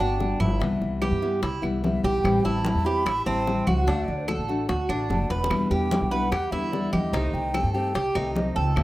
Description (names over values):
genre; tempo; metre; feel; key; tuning
latin, Cuban son and guajira; 147 BPM; 4/4; straight; unclear; A4 = 440 Hz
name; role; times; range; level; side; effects
mellow hollow concert flute; melody; 0.0-8.8 s; D5 to B5; -30 LUFS; right 1 dB; none
nylon-string guitar; accompaniment; 0.0-8.8 s; B2 to G4; -29 LUFS; left 2 dB; none
Cuban tres; arpeggios; 0.0-8.8 s; C4 to B4; -28 LUFS; right 3 dB; none
upright bass; bass; 0.0-8.8 s; E1 to G2; -27 LUFS; equal; none
bongos; percussion; 0.0-8.8 s; none; -36 LUFS; left 5 dB; none
congas; percussion; 0.0-8.8 s; none; -32 LUFS; equal; none
claves; percussion; 0.4-8.8 s; none; -37 LUFS; right 1 dB; none
room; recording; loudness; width
light reverb, small room ambience; rough home demo mix; -22 LUFS; side -16 dB against mid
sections
0.0-8.8 A section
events
drum fill 5.3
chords
0.0 Gmaj7; 0.6 Cmaj7; 2.2 Am7; 3.9 D; 5.5 Em7; 7.1 Cm6